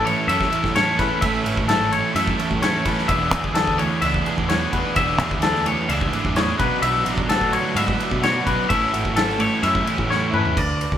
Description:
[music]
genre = math rock and midwest emo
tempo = 128 BPM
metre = 4/4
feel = straight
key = A major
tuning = A4 = 440 Hz
[part]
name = mellow electric guitar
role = accompaniment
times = 0.0-11.0 s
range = E2 to B4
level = -28 LUFS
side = right 5 dB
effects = none
[part]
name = twangy electric guitar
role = arpeggios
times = 0.0-11.0 s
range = A4 to E5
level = -22 LUFS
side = left 4 dB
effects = none
[part]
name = cranked stack guitar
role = riff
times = 0.0-10.6 s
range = A2 to A4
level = -24 LUFS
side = right 2 dB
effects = overdrive
[part]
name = growling fingered electric bass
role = bass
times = 0.0-11.0 s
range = E1 to B2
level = -27 LUFS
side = equal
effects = overdrive
[part]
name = loose indie drum kit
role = drums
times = 0.1-11.0 s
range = crash cymbal, kick drum, ride cymbal, snare drum, toms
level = -26 LUFS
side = equal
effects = none
[sound]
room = moderate large studio reverb, RT60 1.4 s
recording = band playing live in one room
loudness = -18 LUFS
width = side -10 dB against mid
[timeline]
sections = 0.0-10.6 A section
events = drum fill 10.1-10.6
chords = 0.0 Amaj7; 3.1 E7sus4; 6.6 Bm11; 8.7 Amaj9

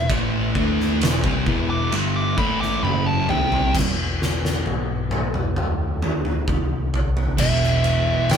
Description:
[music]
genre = stoner and doom metal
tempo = 66 BPM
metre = 4/4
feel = straight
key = E minor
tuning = A4 = 440 Hz
[part]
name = fuzz lead guitar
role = melody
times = 0.0-8.4 s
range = E5 to D6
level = -24 LUFS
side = equal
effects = distortion
[part]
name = tonewheel organ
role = sustained chords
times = 0.0-8.4 s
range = E3 to B4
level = -36 LUFS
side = left 2 dB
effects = none
[part]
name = overdriven picked electric bass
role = bass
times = 0.0-8.4 s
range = E1 to D2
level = -26 LUFS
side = equal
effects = none
[part]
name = thick fuzz guitar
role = riff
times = 0.1-8.4 s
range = E2 to D4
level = -24 LUFS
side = left 6 dB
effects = distortion
[part]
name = thick fuzz guitar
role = riff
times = 0.1-8.4 s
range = E2 to D4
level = -24 LUFS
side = right 8 dB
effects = distortion
[part]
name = oversized low-tuned drum kit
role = drums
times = 0.1-8.4 s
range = crash cymbal, kick drum, ride cymbal, snare drum, toms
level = -23 LUFS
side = equal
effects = none
[sound]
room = moderate studio reverb, RT60 0.7 s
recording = band playing live in one room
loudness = -19 LUFS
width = side -7 dB against mid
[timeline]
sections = 0.0-3.8 A section; 3.8-7.4 B section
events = lead electric guitar solo 0.0-3.8; drum fill 2.8-3.8, 3.8-7.4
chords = 0.0 Em; 3.8 E5

